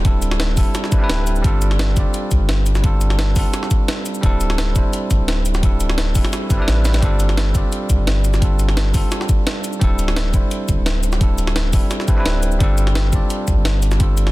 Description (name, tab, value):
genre	liquid drum and bass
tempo	172 BPM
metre	4/4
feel	straight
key	unclear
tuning	A4 = 440 Hz
part	bell-like tine electric piano	accompaniment	0.0-14.3 s	G3 to D5	-24 LUFS	right 1 dB	vintage 12-bit sampler grit, tape echo
part	warm sub bass	bass	0.0-14.3 s	D1 to C2	-18 LUFS	equal	none
part	electronic kick drum	drums	0.0-14.1 s	none	-17 LUFS	equal	overdrive
part	jungle sampler-style drum kit	drums	0.0-14.3 s	hi-hat, shaker, snare drum	-24 LUFS	equal	none
room	little or no reverb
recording	dense, heavily limited modern master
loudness	-15 LUFS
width	side -19 dB against mid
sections	0.0-14.3 A section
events	drum fill 6.9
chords	0.0 D9sus4; 1.4 G9sus4; 4.2 D9sus4; 7.0 G9sus4; 9.8 D9sus4; 12.6 G9sus4